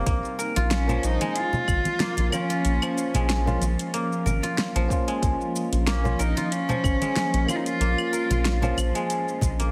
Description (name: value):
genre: organic downtempo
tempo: 93 BPM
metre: 4/4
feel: swing 55% on 16ths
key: Bb minor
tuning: A4 = 440 Hz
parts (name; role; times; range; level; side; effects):
- ethereal airy pad; sustained chords; 0.0-9.7 s; F3 to Db4; -35 LUFS; equal; ensemble chorus, built-in reverb, phaser, sidechain pumping
- guzheng; arpeggios; 0.0-9.7 s; F3 to Bb4; -32 LUFS; equal; digital delay
- round analog bass; bass; 0.1-9.7 s; Ab1 to Bb1; -27 LUFS; equal; none
- deep house drum kit; drums; 0.1-9.7 s; claves, hi-hat, shaker, snare drum; -32 LUFS; equal; studio reverb
- electronic kick drum; drums; 0.1-9.6 s; none; -28 LUFS; equal; studio reverb
- congas; percussion; 0.6-9.7 s; none; -33 LUFS; equal; none
- rich cello; melody; 0.7-8.8 s; Db4 to F4; -32 LUFS; equal; delay
- bell-like tine electric piano; accompaniment; 0.9-8.8 s; Bb3 to F4; -34 LUFS; equal; sidechain pumping, digital delay
room: light reverb, digital ambience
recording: heavily compressed radio sound, multiband compression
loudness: -24 LUFS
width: mono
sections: 0.1-9.7 A section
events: none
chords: 0.1 Bbm